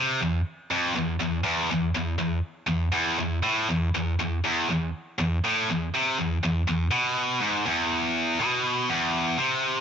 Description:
metal; 121 BPM; 4/4; straight; A4 = 442 Hz
heavy high-gain guitar; solo; 0.0-9.8 s; E2 to C3; -23 LUFS; equal; distortion, cassette tape
light reverb, digital ambience; home recording on cassette, nothing above 7.7 kHz; -23 LUFS; side -7 dB against mid
0.0-9.8 A section
half time 0.0-9.8

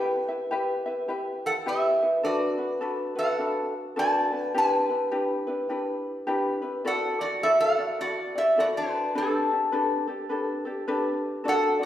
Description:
Hawaiian; 104 BPM; 4/4; swing 61% on 8ths; G major, D major from 6.9 s; A4 = 440 Hz
metal-body resonator slide guitar; melody; 0.0-11.9 s; D4 to A5; -24 LUFS; equal
ukulele; accompaniment; 0.0-11.9 s; D4 to E5; -28 LUFS; left 1 dB
wet recital hall reverb, RT60 1.4 s; recorded in a church or concert hall; -24 LUFS; side -12 dB against mid
0.0-6.9 A section; 6.9-11.9 B section
0.0 Em; 2.2 D6; 4.5 G6; 6.9 Dadd9; 9.2 Gadd9

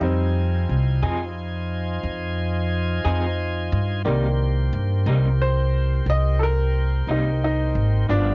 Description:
slow blues; 59 BPM (dotted quarters); 12/8; straight; C minor; A4 = 440 Hz
bright upright piano; accompaniment; 0.0-8.3 s; Eb3 to Eb5; -30 LUFS; equal; cassette tape
tonewheel organ; sustained chords; 0.0-8.3 s; G3 to Ab5; -34 LUFS; equal; slow rotary speaker, cassette tape
upright bass; bass; 0.0-8.3 s; G1 to G2; -24 LUFS; equal
electric guitar through a small old amp; accompaniment; 1.0-8.3 s; G2 to Ab4; -29 LUFS; equal; tremolo, cassette tape
little or no reverb; home recording on cassette, nothing above 7.6 kHz; -22 LUFS; mono
0.0-8.3 A section
upright piano solo 0.0-8.3
0.0 Fm7; 4.0 Cm7

